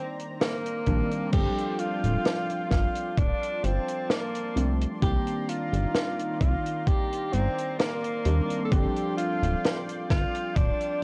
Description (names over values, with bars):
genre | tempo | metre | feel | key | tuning
vaporwave | 65 BPM | 4/4 | swing 53% on 16ths | unclear | A4 = 441 Hz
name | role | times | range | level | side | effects
warm tenor saxophone | melody | 0.0-11.0 s | Bb3 to A4 | -33 LUFS | equal | tape echo
warbly lo-fi synth keys | accompaniment | 0.0-11.0 s | Eb3 to A4 | -36 LUFS | equal | analog chorus
lush unison pad | sustained chords | 0.0-11.0 s | Eb3 to C6 | -40 LUFS | equal | chorus, vintage 12-bit sampler grit
compact cocktail drum kit | drums | 0.2-11.0 s | crash cymbal, hi-hat, snare drum | -33 LUFS | equal | none
chorused synth bass | bass | 0.9-10.7 s | D1 to Eb2 | -28 LUFS | equal | none
electronic kick drum | drums | 0.9-10.8 s | none | -28 LUFS | equal | overdrive
room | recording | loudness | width
little or no reverb | dry, gritty hardware recording, cassette tape | -27 LUFS | mono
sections
0.0-1.3 A section; 1.3-11.0 B section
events
none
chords
0.0 Cm9; 1.3 G7sus4; 5.0 Cm9; 8.7 G7sus4